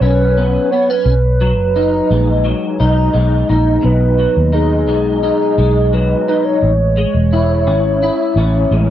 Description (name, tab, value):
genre	indie pop, bedroom pop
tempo	86 BPM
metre	4/4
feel	straight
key	B major, B mixolydian from 3.8 s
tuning	A4 = 440 Hz
part	warbly nostalgic lead	melody	0.0-8.9 s	G#4 to C#5	-17 LUFS	right 2 dB	wide subtle chorus, analog delay
part	electric guitar through a small old amp	accompaniment	0.0-8.9 s	B2 to E4	-16 LUFS	left 2 dB	ensemble chorus, warbly pitch drift
part	vintage muted fingered electric bass	bass	0.0-8.9 s	E1 to D#2	-14 LUFS	equal	none
room	light reverb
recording	none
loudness	-11 LUFS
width	side -11 dB against mid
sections	0.0-3.8 A section; 3.8-8.9 B section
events	none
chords	0.0 Bsus2; 1.1 B6; 6.6 Amaj7